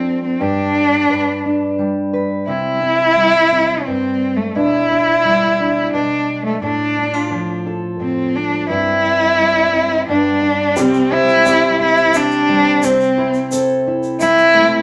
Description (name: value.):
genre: acoustic folk duo or small band.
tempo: 87 BPM.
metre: 3/4.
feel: straight.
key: C major.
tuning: A4 = 441 Hz.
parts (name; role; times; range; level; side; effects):
warm cello; melody; 0.0-14.8 s; A3 to E4; -16 LUFS; equal; none.
fingerpicked steel-string acoustic guitar; accompaniment; 0.0-14.8 s; G2 to B4; -23 LUFS; equal; none.
felt-muted upright piano; arpeggios; 10.8-14.8 s; G3 to E4; -21 LUFS; equal; none.
egg shaker; percussion; 10.8-14.5 s; none; -33 LUFS; equal; none.
room: wet studio reverb, RT60 0.7 s.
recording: none.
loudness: -16 LUFS.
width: mono.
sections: 0.0-10.8 A section; 10.8-14.8 B section.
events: none.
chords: 0.4 G5; 1.1 G; 2.5 C; 4.6 G/B; 6.6 Dm/A; 8.7 C/G; 10.1 G; 10.8 C; 12.8 Am/C.